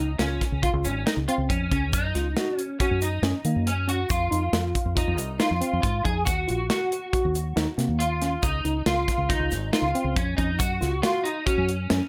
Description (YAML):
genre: progressive instrumental, band music in an uneven meter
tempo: 138 BPM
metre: 5/4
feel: straight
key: unclear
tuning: A4 = 440 Hz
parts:
  - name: clean electric guitar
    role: second line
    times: 0.0-12.1 s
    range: Db4 to Ab4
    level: -31 LUFS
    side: equal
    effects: ensemble chorus
  - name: tine electric piano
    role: arpeggios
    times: 0.0-12.0 s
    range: Bb3 to Gb4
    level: -31 LUFS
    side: equal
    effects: analog chorus
  - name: fingered electric bass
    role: bass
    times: 0.0-12.0 s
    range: Ab1 to Eb3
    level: -30 LUFS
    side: equal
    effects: none
  - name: modern studio drum kit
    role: drums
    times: 0.2-12.0 s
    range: hi-hat, kick drum, snare drum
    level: -30 LUFS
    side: equal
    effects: none
  - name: egg shaker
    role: percussion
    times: 0.8-10.9 s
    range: none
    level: -41 LUFS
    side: equal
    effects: none
room: moderate studio ambience, RT60 0.5 s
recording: none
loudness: -25 LUFS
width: mono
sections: 0.0-12.1 A section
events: none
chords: 0.0 Db; 1.9 Gb5; 4.1 F7(no3); 6.3 Ebm; 8.4 Dbadd9; 10.6 Gb5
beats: 0.20 0.63 1.06 1.50 | 1.93 2.36 2.80 3.23 3.67 | 4.10 4.53 4.97 5.40 5.83 | 6.27 6.70 7.13 7.57 8.00 | 8.43 8.87 9.30 9.73 10.16 | 10.60 11.03 11.46 11.90